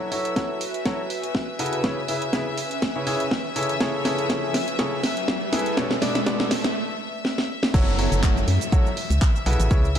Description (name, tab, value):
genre	piano house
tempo	122 BPM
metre	4/4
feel	swing 55% on 16ths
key	unclear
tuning	A4 = 440 Hz
part	rich studio string section	sustained chords	0.0-10.0 s	E5 to E6	-32 LUFS	left 5 dB	sidechain pumping
part	clear upright piano	riff	0.0-10.0 s	B2 to E5	-28 LUFS	left 1 dB	sidechain pumping, low-pass filter, digital delay
part	riser and downlifter	sound effects	1.7-10.0 s	none	-32 LUFS	right 1 dB	none
part	airy breathy pad	texture	0.0-6.8 s	C#4 to A5	-33 LUFS	left 1 dB	chorus, sidechain pumping
part	house drum kit	drums	0.1-10.0 s	crash cymbal, handclaps, hi-hat, shaker, snare drum	-27 LUFS	equal	none
part	electronic kick drum	drums	0.4-9.8 s	none	-23 LUFS	equal	high-pass filter on kick, high-pass filter on room
part	organ-like FM bass	bass	7.7-10.0 s	F#1 to F#2	-21 LUFS	equal	sidechain pumping
room	light reverb, digital ambience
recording	dark, warm production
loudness	-21 LUFS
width	side -9 dB against mid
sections	0.0-7.7 A section; 7.7-10.0 B section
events	build-up 0.0-7.7; drum fill 0.0-6.8, 7.2-7.7; riser 1.7-6.8; break 6.8-7.7; drop 7.7-10.0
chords	0.0 F#m7; 1.8 C#m7; 3.6 Amaj7/C#; 5.8 Bm9; 7.7 F#m7